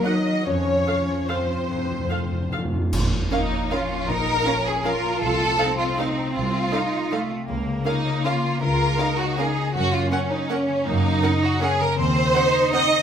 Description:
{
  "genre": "classical, orchestral ballroom waltz",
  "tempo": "139-174 BPM",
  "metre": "3/4",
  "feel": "rubato",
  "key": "Bb minor",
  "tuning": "A4 = 441 Hz",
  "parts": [
    { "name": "warm studio violin section", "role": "melody", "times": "0.0-12.8 s", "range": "C5 to Gb5", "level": "-31 LUFS", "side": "left 1 dB", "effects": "none" },
    { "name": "rich studio violin section", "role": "second line", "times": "0.0-13.0 s", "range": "Db4 to Eb5", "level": "-23 LUFS", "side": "equal", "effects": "none" },
    { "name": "clear French horn section", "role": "sustained chords", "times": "0.0-2.5 s", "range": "C4 to Eb4", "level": "-26 LUFS", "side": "left 3 dB", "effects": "none" },
    { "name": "concert harp", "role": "arpeggios", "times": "0.0-13.0 s", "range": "F2 to Gb5", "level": "-29 LUFS", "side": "left 6 dB", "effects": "none" },
    { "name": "rich studio cello section", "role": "bass", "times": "0.0-13.0 s", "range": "F3 to F4", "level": "-28 LUFS", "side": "right 3 dB", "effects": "none" },
    { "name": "warm studio viola section", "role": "accompaniment", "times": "0.1-12.8 s", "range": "C4 to Gb5", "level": "-30 LUFS", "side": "right 3 dB", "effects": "none" },
    { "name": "rich studio double bass section", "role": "bass", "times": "0.5-12.3 s", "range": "Bb1 to Gb2", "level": "-28 LUFS", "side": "right 2 dB", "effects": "none" },
    { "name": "timpani", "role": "percussion", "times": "0.5-2.9 s", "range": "F2", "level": "-29 LUFS", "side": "right 1 dB", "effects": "none" },
    { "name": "clash cymbals and concert bass drum", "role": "percussion", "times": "2.9-3.7 s", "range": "none", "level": "-29 LUFS", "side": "right 1 dB", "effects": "none" }
  ],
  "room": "wet recital hall reverb, RT60 1.3 s",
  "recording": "none",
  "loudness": "-20 LUFS",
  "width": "side -8 dB against mid",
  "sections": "0.0-2.9 A section; 2.9-13.0 B section",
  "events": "timpani fill 0.5-2.9; band accent 2.9-3.3",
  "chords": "0.5 F; 2.9 Bbm; 5.2 F7/C; 7.5 Bbm/Db; 9.7 Gb; 12.0 Cdim/Eb"
}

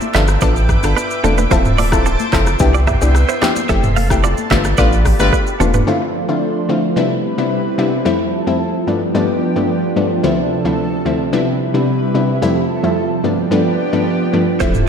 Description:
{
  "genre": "afrobeats",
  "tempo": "110 BPM",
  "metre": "4/4",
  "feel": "straight",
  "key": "unclear",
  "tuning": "A4 = 440 Hz",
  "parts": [
    { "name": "analog pluck", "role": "accompaniment", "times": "0.0-14.9 s", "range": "D2 to A4", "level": "-17 LUFS", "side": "left 2 dB", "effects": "chorus" },
    { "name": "lush unison pad", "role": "sustained chords", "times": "0.0-14.9 s", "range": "C3 to E6", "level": "-20 LUFS", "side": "right 1 dB", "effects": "chorus" },
    { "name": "afro-pop drum kit", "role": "drums", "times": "0.0-5.9, 14.6-14.9 s", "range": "handclaps, hi-hat, kick drum, rim click, shaker, toms", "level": "-18 LUFS", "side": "equal", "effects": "none" },
    { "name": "congas", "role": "percussion", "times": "0.0-5.9, 14.6-14.7 s", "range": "none", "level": "-26 LUFS", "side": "left 6 dB", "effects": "none" },
    { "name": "direct-recorded clean electric guitar", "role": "riff", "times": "0.1-5.8, 14.6-14.7 s", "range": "C4 to F5", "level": "-22 LUFS", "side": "right 7 dB", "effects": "analog chorus, ping-pong delay" },
    { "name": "warm sub bass", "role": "bass", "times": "0.1-5.8, 14.6-14.9 s", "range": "D1 to C2", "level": "-16 LUFS", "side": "equal", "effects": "none" },
    { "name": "clear horn section", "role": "second line", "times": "4.8-5.4 s", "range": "G3 to B4", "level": "-22 LUFS", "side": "left 2 dB", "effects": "none" }
  ],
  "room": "wet lush hall reverb, RT60 1.9 s",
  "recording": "dreamy mix soaked in reverb",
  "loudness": "-13 LUFS",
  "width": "side -7 dB against mid",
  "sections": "0.0-5.9 A section; 5.9-14.6 B section",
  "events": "band accent 3.7-5.9",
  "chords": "0.1 G7; 1.5 Dm7; 2.6 Cmaj7; 3.7 Fmaj7; 4.5 G7; 5.9 Dm7; 7.0 Cmaj7; 8.1 Fmaj7; 8.9 G7; 10.2 Dm7; 11.3 Cmaj7; 12.4 Fmaj7; 13.2 G7"
}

